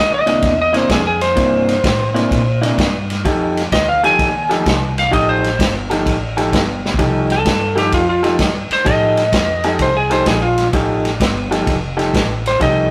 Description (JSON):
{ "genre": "electric blues shuffle", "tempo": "128 BPM", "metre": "4/4", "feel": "swing 67% on 8ths", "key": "F mixolydian", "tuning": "A4 = 444 Hz", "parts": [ { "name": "lightly driven lead guitar", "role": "melody", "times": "0.0-12.9 s", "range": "F4 to Ab5", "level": "-18 LUFS", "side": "equal", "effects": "none" }, { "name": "upright bass", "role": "bass", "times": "0.0-12.9 s", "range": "F1 to Bb2", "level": "-24 LUFS", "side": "equal", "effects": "none" }, { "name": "electric guitar through a small old amp", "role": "riff", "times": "0.3-12.9 s", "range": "C3 to A4", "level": "-21 LUFS", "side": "equal", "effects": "none" }, { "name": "vintage drum kit", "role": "drums", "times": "0.3-12.8 s", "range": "kick drum, ride cymbal, snare drum", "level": "-21 LUFS", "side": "equal", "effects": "none" } ], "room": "moderate stone room reverb, RT60 1.1 s", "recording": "rough rehearsal-room recording, tube saturation", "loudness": "-16 LUFS", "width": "mono", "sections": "0.0-7.0 A section; 7.0-12.9 B section", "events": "drum fill 6.8; lead electric guitar solo 7.0-12.9", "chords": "0.0 C9; 3.2 F9" }